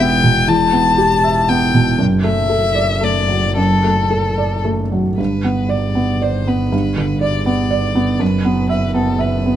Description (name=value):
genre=neoclassical piano and strings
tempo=109-123 BPM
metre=3/4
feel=rubato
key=G major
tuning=A4 = 443 Hz
part: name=clear violin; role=melody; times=0.0-9.6 s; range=A4 to A5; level=-19 LUFS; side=left 4 dB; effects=slapback echo
part: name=felt-muted upright piano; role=accompaniment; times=0.0-9.6 s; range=E2 to E5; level=-16 LUFS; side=right 2 dB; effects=none
part: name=rich double bass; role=bass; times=0.0-9.6 s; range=E1 to G1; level=-20 LUFS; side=equal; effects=none
room=light reverb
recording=none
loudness=-13 LUFS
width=side -11 dB against mid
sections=0.0-5.2 A section; 5.2-9.6 B section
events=none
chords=0.0 Em; 2.0 D/F#; 5.2 G; 8.2 Bsus4/F#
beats=| 0.49 0.99 1.49 | 1.99 2.50 3.02 | 3.57 4.12 4.66 | 5.19 5.70 6.22 | 6.72 7.22 7.71 | 8.21 8.70 9.21